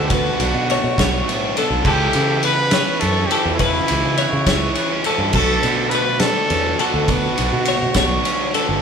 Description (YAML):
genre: math rock and midwest emo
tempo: 69 BPM (dotted quarters)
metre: 6/8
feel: straight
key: B minor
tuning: A4 = 440 Hz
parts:
  - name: twelve-string electric guitar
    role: accompaniment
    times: 0.0-8.8 s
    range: G2 to F#4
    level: -27 LUFS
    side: right 6 dB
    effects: none
  - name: twelve-string electric guitar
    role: arpeggios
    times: 0.0-8.8 s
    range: A4 to C#5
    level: -22 LUFS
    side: left 4 dB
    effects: spring reverb
  - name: crunchy overdriven guitar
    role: riff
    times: 0.0-8.8 s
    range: B2 to D4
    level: -24 LUFS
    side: right 1 dB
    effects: none
  - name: fingered electric bass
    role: bass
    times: 0.0-8.8 s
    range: G1 to C#3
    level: -23 LUFS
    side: right 1 dB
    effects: none
  - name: clear trumpet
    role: melody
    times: 0.1-8.5 s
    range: E4 to B4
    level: -23 LUFS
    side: right 1 dB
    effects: none
  - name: loose indie drum kit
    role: drums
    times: 0.1-8.7 s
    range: crash cymbal, kick drum, ride cymbal, snare drum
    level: -21 LUFS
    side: equal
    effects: none
room: moderate large studio reverb, RT60 1.2 s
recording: band playing live in one room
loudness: -15 LUFS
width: side -6 dB against mid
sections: 0.0-8.8 A section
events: none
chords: 0.0 Bm9; 1.9 C#m7b5; 5.3 Bm9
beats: | 0.11 0.98 | 1.85 2.72 | 3.60 4.47 | 5.34 6.21 | 7.08 7.95